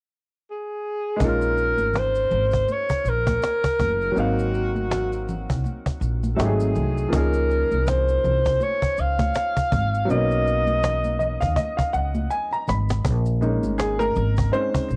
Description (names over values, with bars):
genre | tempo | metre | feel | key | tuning
hip hop, jazz-hop | 81 BPM | 4/4 | swing 58% on 16ths | unclear | A4 = 440 Hz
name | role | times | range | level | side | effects
breathy alto saxophone | melody | 0.5-11.6 s | Gb4 to F5 | -26 LUFS | equal | tape echo
warm grand piano | accompaniment | 1.2-15.0 s | F3 to Cb6 | -28 LUFS | equal | cassette tape
upright bass | bass | 1.2-15.0 s | Gb1 to Eb2 | -27 LUFS | equal | tube saturation
cajon | drums | 1.2-15.0 s | none | -28 LUFS | equal | cassette tape
maracas and congas | percussion | 1.2-15.0 s | none | -36 LUFS | equal | none
room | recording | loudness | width
light reverb | home recording on cassette | -22 LUFS | mono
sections
0.0-1.2 A section; 1.2-13.1 B section; 13.1-15.0 C section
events
grand piano fill 10.8-13.1; drum fill 12.3-13.1; grand piano solo 13.1-15.0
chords
0.0 N.C.; 1.2 Bbm11; 4.2 Ab13; 6.4 Ab7b9; 7.1 Db6; 10.1 Cbmaj7; 13.1 Bbm11